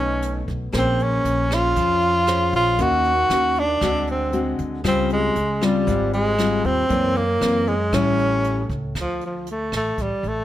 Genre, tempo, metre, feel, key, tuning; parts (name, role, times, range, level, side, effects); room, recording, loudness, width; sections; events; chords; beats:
bossa nova; 117 BPM; 4/4; straight; A4 = 440 Hz
breathy tenor saxophone; melody; 0.0-10.4 s; F3 to Gb4; -20 LUFS; right 1 dB
nylon-string guitar; accompaniment; 0.0-8.9 s; Gb2 to C5; -24 LUFS; left 3 dB
upright bass; bass; 0.0-10.4 s; Ab1 to Gb2; -26 LUFS; right 1 dB
jazz brush drum kit; drums; 0.2-10.4 s; hi-hat, kick drum, rim click; -31 LUFS; right 1 dB
light reverb; -18 LUFS; side -13 dB against mid
0.0-9.0 A section; 9.0-10.4 B section
0.0 B9; 0.7 Bbm9; 2.8 Ebm7; 3.8 D7#11; 4.8 Dbmaj7#11; 6.9 Gb7#11; 7.9 A7; 9.0 D5
0.22 | 0.73 1.25 1.76 2.27 | 2.79 3.30 3.81 4.33 | 4.84 5.36 5.87 6.38 | 6.90 7.41 7.92 8.44 | 8.95 9.47 9.98